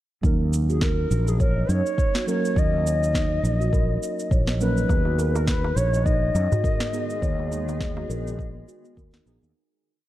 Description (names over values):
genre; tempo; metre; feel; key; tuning
organic downtempo; 103 BPM; 4/4; swing 57% on 16ths; Eb minor; A4 = 435 Hz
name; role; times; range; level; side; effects
muted felt-like synth keys; accompaniment; 0.2-9.6 s; Gb3 to Bb4; -32 LUFS; right 3 dB; chorus, sidechain pumping
steel tongue drum; arpeggios; 0.2-9.5 s; Eb4 to Eb5; -31 LUFS; right 2 dB; low-pass filter
fretless electric bass; bass; 0.2-9.5 s; Bb1 to Gb2; -24 LUFS; equal; sidechain pumping
electronic kick drum; drums; 0.2-9.1 s; none; -24 LUFS; equal; none
electronic shaker and snare drum; drums; 0.2-9.5 s; none; -32 LUFS; equal; none
mellow hollow Native American-style cedar flute; melody; 0.7-9.0 s; Ab4 to Eb5; -28 LUFS; left 2 dB; digital delay
granular cloud pad; sustained chords; 6.4-9.6 s; Eb3 to Ab4; -39 LUFS; left 1 dB; built-in reverb, sidechain pumping
darbuka; percussion; 4.9-8.1 s; none; -29 LUFS; equal; none
room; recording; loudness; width
light reverb, small room ambience; dark, warm production; -20 LUFS; side -14 dB against mid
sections
0.2-9.6 groove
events
fade-out 6.4-9.6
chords
0.2 Ebm7; 4.9 Abm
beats
| 0.23 0.82 1.40 1.98 | 2.56 3.15 3.73 4.31 | 4.89 5.48 6.06 6.64 | 7.22 7.81 8.39 8.97